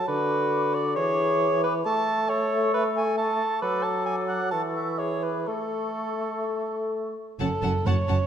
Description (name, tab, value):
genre	quick classical-period movement for symphony orchestra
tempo	123-137 BPM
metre	4/4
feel	rubato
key	A major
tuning	A4 = 440 Hz
part	clear clarinet	second line	0.0-7.1 s	F#4 to A4	-32 LUFS	left 4 dB	none
part	mellow cor anglais	second line	0.0-8.3 s	A4 to A5	-27 LUFS	right 1 dB	none
part	mellow bassoon	accompaniment	0.0-7.1 s	D3 to A3	-28 LUFS	equal	none
part	mellow hollow large flute ensemble	second line	0.1-7.2 s	C#6 to D6	-34 LUFS	left 2 dB	none
part	warm studio violin section	melody	7.4-8.2 s	A5	-38 LUFS	left 4 dB	none
part	warm studio violin section	second line	7.4-8.2 s	C#4 to F#5	-32 LUFS	left 2 dB	none
part	warm studio double bass section	bass	7.4-8.2 s	F#1	-26 LUFS	right 3 dB	none
part	warm symphonic cello section	bass	7.4-8.2 s	F#2	-28 LUFS	right 2 dB	none
room	wet scoring stage reverb, RT60 1.6 s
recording	dark, warm production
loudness	-23 LUFS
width	side -8 dB against mid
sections	0.0-7.4 A section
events	none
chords	0.1 Bm/D; 1.0 E7; 1.8 A; 3.6 D/F#; 4.5 A/E; 5.5 A; 7.4 F#m